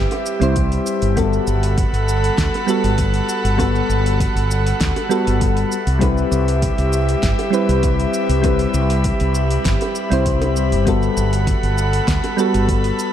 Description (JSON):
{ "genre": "sunset chillout", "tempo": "99 BPM", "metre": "4/4", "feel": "straight", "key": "G major", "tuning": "A4 = 443 Hz", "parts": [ { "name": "soft electric-piano-like synth keys", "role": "accompaniment", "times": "0.0-13.1 s", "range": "G3 to C5", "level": "-20 LUFS", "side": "moving between left 6 dB and right 6 dB", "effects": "chorus, auto-pan, tape echo" }, { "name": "airy breathy pad", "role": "sustained chords", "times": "0.0-13.1 s", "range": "G4 to B5", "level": "-23 LUFS", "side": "equal", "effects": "chorus" }, { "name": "mellow fretless electric bass", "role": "bass", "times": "0.0-12.9 s", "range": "G1 to D2", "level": "-18 LUFS", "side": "equal", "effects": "none" }, { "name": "smooth R&B drum kit", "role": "drums", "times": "0.1-13.1 s", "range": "cabasa, hi-hat, snare drum", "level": "-28 LUFS", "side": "equal", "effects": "studio reverb" }, { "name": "bongos", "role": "percussion", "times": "0.1-12.4 s", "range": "none", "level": "-30 LUFS", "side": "right 2 dB", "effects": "none" }, { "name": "electronic kick drum", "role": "drums", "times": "0.6-12.8 s", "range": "none", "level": "-22 LUFS", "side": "equal", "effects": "studio reverb" } ], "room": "light reverb, digital ambience", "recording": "dark, warm production", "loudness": "-15 LUFS", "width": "side -10 dB against mid", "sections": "0.0-13.1 A section", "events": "none", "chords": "0.0 Cmaj7; 1.2 Gmaj9; 5.7 Cmaj7; 10.9 Gmaj9", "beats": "0.56 | 1.17 1.78 2.38 2.99 | 3.60 4.20 4.81 5.41 | 6.02 6.63 7.23 7.84 | 8.44 9.05 9.66 10.26 | 10.87 11.47 12.08 12.69" }